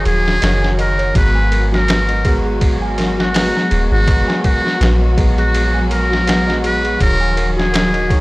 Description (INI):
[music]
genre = trip hop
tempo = 82 BPM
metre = 4/4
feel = swing 56% on 16ths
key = G# minor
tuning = A4 = 437 Hz
[part]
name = bright tine electric piano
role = accompaniment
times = 0.0-8.2 s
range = D#3 to A#5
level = -24 LUFS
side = equal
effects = harmonic tremolo, tape echo
[part]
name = rich studio string section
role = sustained chords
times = 0.0-8.2 s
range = F#3 to F#4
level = -24 LUFS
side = left 1 dB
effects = none
[part]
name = celesta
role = arpeggios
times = 0.0-8.2 s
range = F#4 to G#5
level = -24 LUFS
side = right 2 dB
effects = tape echo
[part]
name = soft 808-style bass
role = bass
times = 0.0-8.2 s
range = D#1 to A#1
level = -17 LUFS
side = equal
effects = tube saturation
[part]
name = trumpet with metal mute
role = melody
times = 0.1-8.2 s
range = F#4 to B4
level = -19 LUFS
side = equal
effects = dub echo
[part]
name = trip hop sampler-style drum kit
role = drums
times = 0.1-8.2 s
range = hi-hat, kick drum, ride cymbal, snare drum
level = -18 LUFS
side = equal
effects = overdrive
[sound]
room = digital ambience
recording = dry, gritty hardware recording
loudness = -12 LUFS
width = side -21 dB against mid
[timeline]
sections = 0.0-8.2 A section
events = none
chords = 0.0 D#m7; 1.2 G#m9; 7.0 D#m7